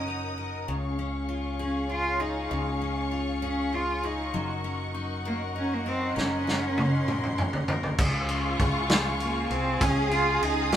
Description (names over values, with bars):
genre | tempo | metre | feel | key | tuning
six-eight pop ballad | 66 BPM (dotted quarters) | 6/8 | straight | Db major | A4 = 440 Hz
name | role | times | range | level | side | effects
warm cello | melody | 0.0-10.8 s | Bb3 to F4 | -30 LUFS | right 1 dB | analog delay
picked steel-string acoustic guitar | accompaniment | 0.0-10.8 s | Db3 to Bb4 | -34 LUFS | left 3 dB | none
warm studio string section | sustained chords | 0.0-10.8 s | Ab4 to Eb6 | -34 LUFS | left 2 dB | none
fretless electric bass | bass | 0.0-10.8 s | Gb1 to Db2 | -34 LUFS | equal | none
natural country drum kit | drums | 6.2-10.8 s | crash cymbal, kick drum, ride cymbal, snare drum, toms | -27 LUFS | equal | none
dark studio violin section | second line | 8.0-10.8 s | F4 to Ab4 | -30 LUFS | right 2 dB | none
room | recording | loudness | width
moderate large studio reverb, RT60 0.8 s | band playing live in one room, faint mains hum | -25 LUFS | side -10 dB against mid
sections
0.0-8.0 A section; 8.0-10.8 B section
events
drum fill 6.2-8.0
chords
0.0 Gb6; 0.7 Db; 4.3 Gb6; 8.0 Db